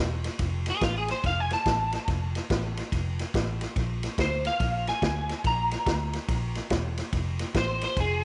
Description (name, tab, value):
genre	electric blues shuffle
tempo	143 BPM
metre	4/4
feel	swing 64% on 8ths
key	unclear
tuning	A4 = 440 Hz
part	vintage muted fingered electric bass	bass	0.0-8.2 s	E1 to D2	-33 LUFS	equal	none
part	vintage drum kit	drums	0.2-8.1 s	kick drum, ride cymbal, snare drum	-32 LUFS	equal	none
part	electric guitar at the edge of break-up	melody	0.7-8.2 s	F4 to Bb5	-31 LUFS	equal	ensemble chorus
room	moderate spring reverb, RT60 1.2 s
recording	nothing above 10.9 kHz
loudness	-28 LUFS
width	mono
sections	0.0-8.2 A section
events	none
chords	0.4 F; 3.8 Bb; 7.1 F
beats	| 0.39 0.81 1.23 1.65 | 2.07 2.50 2.92 3.34 | 3.76 4.18 4.60 5.02 | 5.44 5.86 6.28 6.70 | 7.12 7.54 7.96